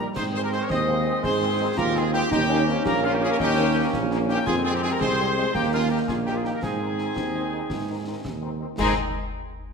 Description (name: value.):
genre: military-style march for wind band.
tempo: 111 BPM (dotted quarters).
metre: 6/8.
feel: straight.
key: Ab major.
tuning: A4 = 440 Hz.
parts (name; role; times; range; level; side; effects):
dark trumpet section; melody; 0.0-8.9 s; F4 to Eb5; -30 LUFS; right 2 dB; none.
mellow piccolo; second line; 0.0-9.0 s; F5 to Eb6; -32 LUFS; left 5 dB; none.
mellow woodwind section; second line; 0.0-8.9 s; Db4 to C5; -31 LUFS; left 2 dB; none.
warm French horn section; accompaniment; 0.0-8.9 s; Eb3 to Eb4; -32 LUFS; left 5 dB; none.
brilliant trombone section; sustained chords; 0.0-8.9 s; Eb3 to Db4; -31 LUFS; equal; none.
mellow tuba; bass; 0.0-8.9 s; Bb1 to Ab2; -27 LUFS; right 3 dB; none.
clear euphonium; second line; 0.1-8.5 s; G3 to F4; -30 LUFS; right 3 dB; none.
concert snare drum, clash cymbals and concert bass drum; drums; 0.2-9.0 s; none; -34 LUFS; left 2 dB; none.
room: wet scoring stage reverb, RT60 1.7 s.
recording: none.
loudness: -21 LUFS.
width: side -5 dB against mid.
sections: 0.0-8.8 A section.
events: none.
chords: 0.2 Ab; 2.3 Eb7; 4.5 Fm; 5.5 Eb5; 6.6 Ab.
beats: | 0.16 0.70 | 1.24 1.78 | 2.32 2.85 | 3.39 3.93 | 4.47 5.01 | 5.55 6.09 | 6.63 7.17 | 7.71 8.24 | 8.78.